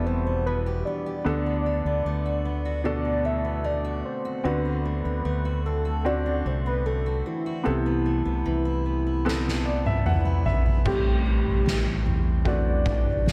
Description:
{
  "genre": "pop ballad",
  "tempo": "75 BPM",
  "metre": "4/4",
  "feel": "straight",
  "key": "unclear",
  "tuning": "A4 = 440 Hz",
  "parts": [
    { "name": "warm velvety synth lead", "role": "melody", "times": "0.0-13.3 s", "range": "E4 to E5", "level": "-32 LUFS", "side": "equal", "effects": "chorus, tremolo" },
    { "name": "warm upright piano", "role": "accompaniment", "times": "0.0-13.3 s", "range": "A2 to F#5", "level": "-33 LUFS", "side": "equal", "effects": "none" },
    { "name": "fingerpicked steel-string acoustic guitar", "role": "arpeggios", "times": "0.0-13.3 s", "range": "E2 to G4", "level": "-36 LUFS", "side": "equal", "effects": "slapback echo" },
    { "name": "fingered electric bass", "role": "bass", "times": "0.0-13.3 s", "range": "E1 to E2", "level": "-30 LUFS", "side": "equal", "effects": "none" },
    { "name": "soft-mallet drum kit", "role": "drums", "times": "9.3-13.3 s", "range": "crash cymbal, kick drum, snare drum, toms", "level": "-26 LUFS", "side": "equal", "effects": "none" }
  ],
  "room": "light reverb, small room reverb",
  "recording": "none",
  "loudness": "-25 LUFS",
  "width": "mono",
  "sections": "0.0-10.9 A section; 10.9-13.3 B section",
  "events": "upright piano fill 9.3-10.9; drum fill 9.3-10.9",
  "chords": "0.0 Em; 1.3 Bm7/D; 4.5 D7; 7.7 Amadd9/C; 10.9 Am7"
}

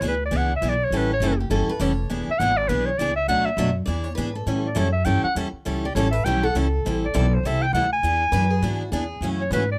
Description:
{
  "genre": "acoustic string swing (jazz manouche)",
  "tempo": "202 BPM",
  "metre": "4/4",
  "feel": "swing 59% on 8ths",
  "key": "unclear",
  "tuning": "A4 = 436 Hz",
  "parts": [
    { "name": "mellow clarinet", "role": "melody", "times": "0.0-9.8 s", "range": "B4 to G#5", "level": "-26 LUFS", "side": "equal", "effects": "none" },
    { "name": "picked steel-string acoustic guitar", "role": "accompaniment", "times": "0.0-9.6 s", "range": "B2 to A4", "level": "-29 LUFS", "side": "equal", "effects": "none" },
    { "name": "upright bass", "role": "bass", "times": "0.0-9.8 s", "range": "E1 to A2", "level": "-27 LUFS", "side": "equal", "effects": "none" },
    { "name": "picked steel-string acoustic guitar", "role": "second line", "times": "1.4-9.3 s", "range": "F#4 to D5", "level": "-33 LUFS", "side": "equal", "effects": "none" }
  ],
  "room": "light reverb",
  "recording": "close, detailed microphones",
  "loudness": "-23 LUFS",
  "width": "mono",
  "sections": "0.0-9.8 A section",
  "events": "none",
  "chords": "0.0 E7; 0.9 A7; 2.1 E7; 3.3 Bm7; 3.9 E7; 4.5 A7; 6.8 Am7; 8.0 E7; 9.2 F#m7"
}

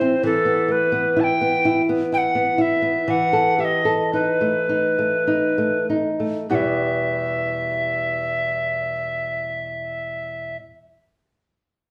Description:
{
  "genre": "romantic duo for recorder and classical guitar",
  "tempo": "46-69 BPM",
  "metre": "3/4",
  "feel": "rubato",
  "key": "E minor",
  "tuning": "A4 = 440 Hz",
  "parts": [
    { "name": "alto recorder", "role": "melody", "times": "0.0-10.6 s", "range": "A4 to A5", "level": "-23 LUFS", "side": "equal", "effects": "none" },
    { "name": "nylon-string guitar", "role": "accompaniment", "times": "0.0-10.6 s", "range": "E2 to A4", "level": "-25 LUFS", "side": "equal", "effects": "none" }
  ],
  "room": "wet large studio reverb, RT60 0.9 s",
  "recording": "band playing live in one room",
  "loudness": "-21 LUFS",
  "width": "mono",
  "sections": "0.0-6.5 A section; 6.5-10.0 B section",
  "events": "slowing down 0.0-6.5",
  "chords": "0.2 E5; 3.1 B7/E; 6.5 Em"
}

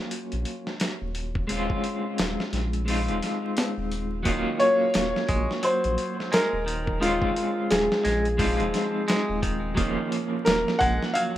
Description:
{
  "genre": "trip hop",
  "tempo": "87 BPM",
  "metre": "4/4",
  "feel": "swing 59% on 16ths",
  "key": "Eb dorian",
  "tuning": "A4 = 439 Hz",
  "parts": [
    { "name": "electric guitar at the edge of break-up", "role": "accompaniment", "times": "0.0-11.4 s", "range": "F3 to F4", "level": "-28 LUFS", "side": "equal", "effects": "tremolo, vintage 12-bit sampler grit, tape echo" },
    { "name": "dusty soul sampler-style drum kit", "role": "drums", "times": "0.1-11.3 s", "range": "hi-hat, kick drum, snare drum", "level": "-29 LUFS", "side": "equal", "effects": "overdrive" },
    { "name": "round analog bass", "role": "bass", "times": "0.3-11.0 s", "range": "Eb1 to Bb1", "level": "-30 LUFS", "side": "equal", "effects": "tube saturation" },
    { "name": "clean electric guitar", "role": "arpeggios", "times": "4.3-11.4 s", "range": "Eb3 to Ab3", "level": "-32 LUFS", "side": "right 1 dB", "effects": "vintage 12-bit sampler grit, tape echo" },
    { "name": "felt-muted upright piano", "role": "melody", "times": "4.6-11.2 s", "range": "F4 to Gb5", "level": "-24 LUFS", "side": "equal", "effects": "tape echo" }
  ],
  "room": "light reverb",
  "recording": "rough home demo mix, vinyl crackle",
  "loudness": "-23 LUFS",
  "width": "side -13 dB against mid",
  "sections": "0.0-11.4 A section",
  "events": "kick drops out 2.9-4.3",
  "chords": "0.0 Ebm7; 1.5 Bbm7/Eb; 2.9 Fm7/Eb; 4.3 Ebm7; 7.0 Bbm7/Eb; 8.4 Fm7/Eb; 9.8 Ebm7"
}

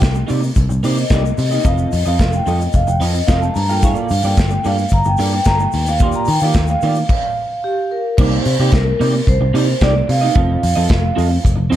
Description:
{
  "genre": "disco",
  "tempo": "110 BPM",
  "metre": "4/4",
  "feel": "straight",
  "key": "C dorian",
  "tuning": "A4 = 440 Hz",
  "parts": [
    { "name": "vibraphone with soft mallets", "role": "melody", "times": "0.0-11.4 s", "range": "G4 to C6", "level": "-20 LUFS", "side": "right 1 dB", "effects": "none" },
    { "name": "electric guitar at the edge of break-up", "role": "accompaniment", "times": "0.0-11.8 s", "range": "Bb3 to F5", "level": "-22 LUFS", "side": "right 4 dB", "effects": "analog chorus" },
    { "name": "picked electric bass", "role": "bass", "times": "0.0-11.8 s", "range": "F1 to Eb3", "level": "-17 LUFS", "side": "equal", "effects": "none" },
    { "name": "modern studio drum kit", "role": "drums", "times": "0.0-11.8 s", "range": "crash cymbal, hi-hat, kick drum, snare drum", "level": "-18 LUFS", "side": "equal", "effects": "none" },
    { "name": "tube shaker", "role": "percussion", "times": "0.0-7.1 s", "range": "none", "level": "-38 LUFS", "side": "left 11 dB", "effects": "none" }
  ],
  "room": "little or no reverb",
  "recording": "dark, warm production",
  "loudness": "-13 LUFS",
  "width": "side -12 dB against mid",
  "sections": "0.0-8.2 A section; 8.2-11.8 B section",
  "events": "vibraphone solo 0.0-8.2; stop 7.1-8.2",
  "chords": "0.0 Cm9; 1.7 F7; 3.6 Gm9; 5.7 Ebmaj9; 7.1 N.C.; 8.2 Cm9; 10.4 F7"
}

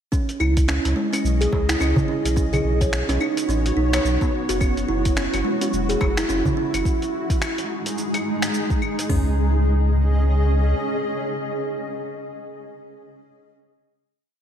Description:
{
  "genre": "organic downtempo",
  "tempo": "107 BPM",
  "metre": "4/4",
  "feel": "swing 59% on 16ths",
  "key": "C# minor",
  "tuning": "A4 = 439 Hz",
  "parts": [
    { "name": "granular cloud pad", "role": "sustained chords", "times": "0.8-12.1 s", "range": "G#3 to D#5", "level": "-26 LUFS", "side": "equal", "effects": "built-in reverb, sidechain pumping" },
    { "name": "kalimba", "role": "arpeggios", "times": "0.1-9.4 s", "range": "G#3 to C#5", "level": "-25 LUFS", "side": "right 2 dB", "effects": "vintage 12-bit sampler grit, tape echo, slapback echo" },
    { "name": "afro-pop drum kit", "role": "drums", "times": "0.1-9.3 s", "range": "hi-hat, kick drum, toms", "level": "-23 LUFS", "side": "equal", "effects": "studio reverb" },
    { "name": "dusty soul sampler-style drum kit", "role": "drums", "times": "0.1-9.1 s", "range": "cabasa, claves, finger snaps, hi-hat", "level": "-28 LUFS", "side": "left 1 dB", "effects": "studio reverb, slapback echo" },
    { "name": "warm sub bass", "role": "bass", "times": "0.4-10.7 s", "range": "E1 to C#2", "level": "-21 LUFS", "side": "equal", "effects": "sidechain pumping" },
    { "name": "darbuka", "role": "percussion", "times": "0.8-6.7 s", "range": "none", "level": "-28 LUFS", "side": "equal", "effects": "none" }
  ],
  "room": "moderate scoring stage reverb, RT60 1.8 s, digital ambience",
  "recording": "big arena sound",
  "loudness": "-19 LUFS",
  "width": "side -9 dB against mid",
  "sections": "0.1-9.1 groove; 9.1-11.3 final chord",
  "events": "none",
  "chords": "0.1 C#m; 2.4 Badd9; 4.6 F#5; 6.9 G#5; 9.1 C#5"
}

